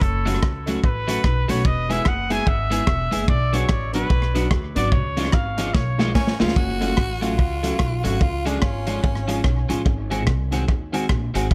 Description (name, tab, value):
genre	ska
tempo	146 BPM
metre	4/4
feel	swing 61% on 8ths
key	F# harmonic minor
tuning	A4 = 440 Hz
part	warm trumpet	melody	0.0-6.4 s	A4 to G#5	-29 LUFS	equal	tape echo
part	upright bass	bass	0.0-11.5 s	E1 to D#2	-27 LUFS	equal	none
part	crunchy breakbeat drum kit	drums	0.0-11.5 s	hi-hat, kick drum, rim click, snare drum	-24 LUFS	equal	none
part	electric guitar at the edge of break-up	accompaniment	0.3-11.5 s	D#3 to G#4	-31 LUFS	equal	analog chorus, tape echo
part	clear upright piano	stabs	0.3-11.4 s	G#3 to G#4	-32 LUFS	equal	tape echo
part	growling tenor saxophone	melody	6.1-9.7 s	C#4 to F#4	-31 LUFS	equal	tape echo
room	studio reverb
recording	none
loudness	-21 LUFS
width	mono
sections	0.0-6.6 A section; 6.6-11.5 B section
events	trumpet solo 0.0-6.6; drum fill 5.7-6.6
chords	0.0 F#m; 1.6 E; 3.3 Bm; 4.9 C#; 6.6 F#m; 8.2 C#; 9.9 G#7